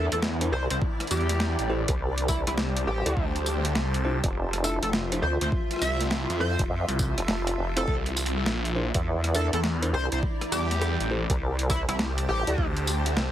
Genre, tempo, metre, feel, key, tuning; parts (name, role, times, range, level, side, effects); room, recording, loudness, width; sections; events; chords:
glitch hop; 102 BPM; 4/4; swing 64% on 16ths; A phrygian; A4 = 440 Hz
sync lead; melody; 0.0-12.7 s; E4 to E5; -32 LUFS; equal; lush chorus, ping-pong delay
bell-like tine electric piano; stabs; 0.0-12.5 s; C4 to E5; -33 LUFS; equal; sidechain pumping, ping-pong delay
vowel-sweep wobble bass; bass; 0.0-12.6 s; F1 to F2; -27 LUFS; equal; chorus
downlifter; sound effects; 0.0-3.2 s; -44 LUFS; left 1 dB
granular cloud pad; texture; 0.0-13.3 s; E4 to C6; -33 LUFS; equal; built-in reverb, sidechain pumping
phased detuned saw bass; bass; 0.1-13.3 s; F1 to F2; -28 LUFS; equal; phaser, tube saturation
boom bap sampler-style drum kit; drums; 0.1-13.3 s; hi-hat, rim click, snare drum, tambourine; -30 LUFS; equal; overdrive
electronic kick drum; drums; 0.8-12.7 s; -28 LUFS; equal; overdrive
little or no reverb; heavily compressed radio sound, multiband compression; -24 LUFS; side -11 dB against mid
0.0-13.3 A section
0.0 C9; 0.8 Am7; 3.2 Dm9; 5.5 Fmaj7; 7.9 C9; 10.2 Am7; 12.6 Dm9